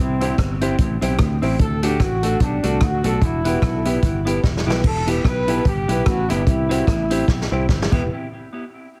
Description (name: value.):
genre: ska.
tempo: 148 BPM.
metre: 4/4.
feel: swing 57% on 8ths.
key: E minor.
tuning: A4 = 440 Hz.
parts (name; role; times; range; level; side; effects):
warm horn section; melody; 0.0-7.7 s; C4 to B4; -28 LUFS; equal; tape echo.
fingered electric bass; bass; 0.0-8.1 s; E1 to D2; -25 LUFS; equal; none.
clean electric guitar; accompaniment; 0.2-8.0 s; A3 to G4; -29 LUFS; equal; spring reverb, tape echo.
dark upright piano; stabs; 0.2-8.1 s; D4 to C5; -29 LUFS; equal; none.
vintage drum kit; drums; 0.2-8.0 s; crash cymbal, hi-hat, kick drum, rim click, snare drum; -24 LUFS; equal; none.
room: light reverb.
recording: heavily compressed radio sound.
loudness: -19 LUFS.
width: mono.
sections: 0.0-4.8 A section; 4.8-8.1 B section.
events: drum fill 4.4-4.8, 7.3-8.1.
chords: 0.0 C; 1.6 D; 3.2 Em; 6.5 C; 7.9 Em; 8.1 N.C..